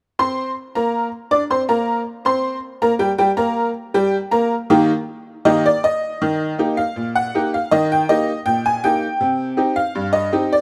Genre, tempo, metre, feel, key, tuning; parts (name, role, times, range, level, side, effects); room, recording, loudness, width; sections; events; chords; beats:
ragtime piano; 80 BPM; 2/4; straight; Eb major; A4 = 440 Hz
tack piano; solo; 0.2-10.6 s; G2 to D6; -19 LUFS; equal
light reverb, studio reverb; rough home demo mix; -19 LUFS; mono
0.2-6.2 A section; 6.2-10.6 B section
0.2 Eb; 9.2 Cm
| 0.20 0.95 | 1.70 2.44 | 3.19 3.94 | 4.69 5.44 | 6.20 6.95 | 7.70 8.45 | 9.20 9.95